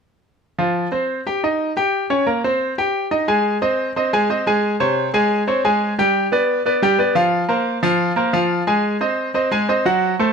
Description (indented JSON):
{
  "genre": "latin",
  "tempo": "178 BPM",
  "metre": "4/4",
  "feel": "straight",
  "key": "unclear",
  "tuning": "A4 = 440 Hz",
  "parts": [
    { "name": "bright baby grand piano", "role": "solo", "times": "0.6-10.3 s", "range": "C3 to Ab5", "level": "-16 LUFS", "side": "equal", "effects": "none" }
  ],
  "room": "light reverb",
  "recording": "close, detailed microphones",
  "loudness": "-16 LUFS",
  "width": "side -6 dB against mid",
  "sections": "0.6-3.3 A section; 3.3-10.3 B section",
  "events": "none",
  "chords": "0.6 F5; 1.2 Eb; 1.9 Gdim; 2.6 C5; 3.3 Ab; 4.6 Db5; 6.0 G7; 7.3 C7sus4; 8.7 Ab7"
}